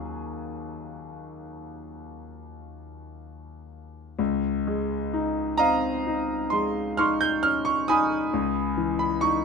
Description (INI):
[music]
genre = classical, impressionist solo piano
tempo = 33-46 BPM (dotted quarters)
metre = 9/8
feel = rubato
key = Db major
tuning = A4 = 440 Hz
[part]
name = clear concert grand piano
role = solo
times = 0.0-9.4 s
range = Db2 to G6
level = -25 LUFS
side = equal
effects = none
[sound]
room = light reverb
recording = dark, warm production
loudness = -23 LUFS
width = side -5 dB against mid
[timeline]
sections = 0.0-4.2 A section; 4.2-9.4 B section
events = none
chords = 0.0 Ebm11; 4.2 Dbmaj9; 8.3 Emaj7/Db